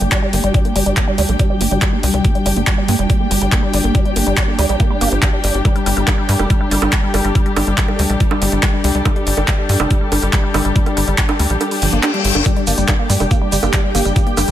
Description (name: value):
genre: psychedelic trance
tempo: 141 BPM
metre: 4/4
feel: straight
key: G minor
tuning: A4 = 442 Hz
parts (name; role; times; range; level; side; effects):
- woody wave-folded pluck; riff; 0.0-14.5 s; F3 to D4; -20 LUFS; moving between left 5 dB and right 4 dB; chorus, auto-pan, sidechain pumping, tape echo
- tight sequencer bass; bass; 0.0-14.5 s; F1 to G2; -18 LUFS; equal; none
- drum and bass drum kit; drums; 0.0-14.5 s; bongos, handclaps, hi-hat; -20 LUFS; right 2 dB; overdrive, small room ambience
- dark studio string section; texture; 0.0-14.5 s; D4 to G5; -22 LUFS; left 2 dB; sidechain pumping
- electronic kick drum; drums; 0.1-14.2 s; none; -16 LUFS; equal; overdrive, small room ambience
- reverse cymbal; sound effects; 11.8-12.5 s; none; -23 LUFS; left 6 dB; none
- evolving wavetable pad; sustained chords; 13.1-14.5 s; G4; -26 LUFS; right 6 dB; phaser, built-in reverb, sidechain pumping
- maracas; percussion; 12.5-14.5 s; none; -25 LUFS; right 4 dB; none
room: light reverb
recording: none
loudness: -13 LUFS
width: side -12 dB against mid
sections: 0.0-14.5 A section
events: filter sweep on synth arpeggio sound 0.0-14.5; kick drops out 11.6-12.5; reverse cymbal 11.8-12.5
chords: 0.0 G5